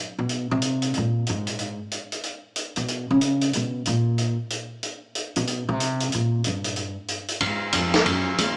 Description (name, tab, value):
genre	jazz piano trio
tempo	186 BPM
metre	4/4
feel	swing 64% on 8ths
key	unclear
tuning	A4 = 440 Hz
part	upright bass	bass	0.2-8.6 s	Eb2 to C#3	-24 LUFS	equal	none
part	vintage drum kit	drums	0.3-8.5 s	hi-hat, kick drum, ride cymbal, snare drum	-25 LUFS	equal	none
room	moderate recital hall reverb, RT60 1.7 s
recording	recorded in a church or concert hall, small speaker sound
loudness	-22 LUFS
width	side -36 dB against mid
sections	0.0-7.4 A section; 7.4-8.6 B section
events	upright bass solo 0.0-7.4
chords	none